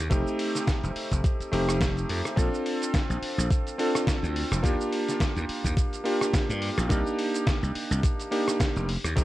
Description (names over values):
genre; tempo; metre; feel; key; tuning
nu-disco, nu disco; 106 BPM; 4/4; swing 56% on 16ths; unclear; A4 = 445 Hz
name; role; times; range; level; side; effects
slap bass; bass; 0.0-9.2 s; F1 to G2; -28 LUFS; equal; tube saturation
clear electric grand piano; accompaniment; 0.1-9.2 s; A3 to A4; -28 LUFS; equal; sidechain pumping, slapback echo
dusty soul sampler-style drum kit; drums; 0.1-9.2 s; hi-hat, rim click, shaker, snare drum; -32 LUFS; equal; none
electronic kick drum; drums; 0.1-9.2 s; none; -26 LUFS; equal; overdrive
room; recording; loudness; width
little or no reverb; none; -24 LUFS; side -16 dB against mid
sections
0.0-9.2 A section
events
none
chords
0.0 F7; 2.4 Bbmaj7; 4.6 Ebmaj7; 6.9 Cm7